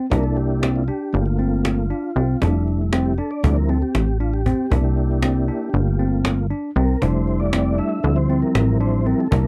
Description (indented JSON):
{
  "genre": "progressive instrumental, band music in an uneven meter",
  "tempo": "235 BPM (eighths)",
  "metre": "9/8",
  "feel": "straight",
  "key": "unclear",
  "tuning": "A4 = 437 Hz",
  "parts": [
    { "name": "tine electric piano", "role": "arpeggios", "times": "0.0-9.5 s", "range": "C4 to D4", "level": "-27 LUFS", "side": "equal", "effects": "none" },
    { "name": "mellow tonewheel organ", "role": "accompaniment", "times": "0.1-9.5 s", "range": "F3 to E5", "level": "-26 LUFS", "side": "equal", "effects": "chorus vibrato" },
    { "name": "plucky analog bass", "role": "bass", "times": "0.1-9.5 s", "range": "F1 to D2", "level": "-22 LUFS", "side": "equal", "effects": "none" },
    { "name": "cajon", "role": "drums", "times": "0.1-9.4 s", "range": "none", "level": "-26 LUFS", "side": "equal", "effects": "none" }
  ],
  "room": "light reverb",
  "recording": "dry, close 1970s-style studio recording",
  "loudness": "-20 LUFS",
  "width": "mono",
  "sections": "0.0-9.5 A section",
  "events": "tonewheel organ solo 0.0-9.5",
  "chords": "0.1 C9; 1.1 Gm7; 2.4 Fmaj7; 3.4 Dm11; 4.7 C9; 5.7 Gm7; 7.0 Fmaj7; 8.0 Dm11",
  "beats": "| 0.11 0.37 0.62 0.88 1.14 1.39 1.65 1.90 2.16 | 2.42 2.67 2.93 3.18 3.44 3.69 3.95 4.21 4.46 | 4.72 4.97 5.23 5.48 5.74 6.00 6.25 6.51 6.76 | 7.02 7.27 7.53 7.79 8.04 8.30 8.55 8.81 9.06 | 9.32"
}